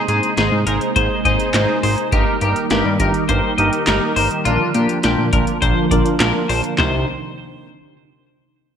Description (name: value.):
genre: synth-pop.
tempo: 103 BPM.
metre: 4/4.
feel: straight.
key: C minor.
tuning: A4 = 440 Hz.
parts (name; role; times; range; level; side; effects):
analog synth brass; accompaniment; 0.0-7.1 s; D4 to C5; -20 LUFS; equal; chorus, low-pass filter.
string machine, cellos; sustained chords; 0.0-7.1 s; C3 to Eb4; -23 LUFS; right 1 dB; ensemble chorus, low-pass filter.
twelve-string electric guitar; second line; 0.1-7.1 s; F4 to Eb5; -21 LUFS; left 5 dB; lush chorus, ping-pong delay.
fat analog bass; bass; 0.1-7.1 s; G1 to Bb2; -20 LUFS; equal; none.
electro analog drum machine; drums; 0.1-6.9 s; handclaps, hi-hat, kick drum, snare drum, toms; -21 LUFS; equal; gated reverb.
room: moderate lush hall reverb, RT60 1.8 s, digital ambience.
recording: bright 1980s-style digital production.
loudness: -15 LUFS.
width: side -8 dB against mid.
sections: 0.0-6.8 A section; 6.8-8.8 B section.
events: filter sweep 0.0-6.8.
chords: 0.0 Abadd9; 2.1 Eb/G; 4.5 Bb; 6.8 Cmadd9.